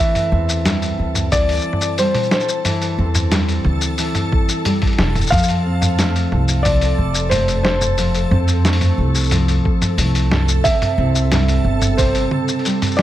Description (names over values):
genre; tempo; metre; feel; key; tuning
folktronica; 90 BPM; 4/4; straight; A minor; A4 = 441 Hz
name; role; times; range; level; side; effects
felt-muted upright piano; melody; 0.0-13.0 s; C5 to F5; -21 LUFS; equal; vintage 12-bit sampler grit, ping-pong delay
fingerpicked steel-string acoustic guitar; arpeggios; 0.0-13.0 s; C3 to B4; -22 LUFS; equal; vintage 12-bit sampler grit
backwards swelling texture; texture; 0.0-13.0 s; A4 to A5; -28 LUFS; right 1 dB; built-in reverb
lo-fi sampler-style drum kit; drums; 0.2-13.0 s; hi-hat, shaker, snare drum, toms; -21 LUFS; equal; none
upright bass; bass; 0.3-12.2 s; E1 to F2; -18 LUFS; equal; tube saturation
electronic kick drum; drums; 1.3-12.1 s; none; -18 LUFS; equal; none
room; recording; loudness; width
light reverb, studio reverb; none; -15 LUFS; side -13 dB against mid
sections
0.0-13.0 A section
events
none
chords
0.0 Am7; 5.3 F; 10.7 C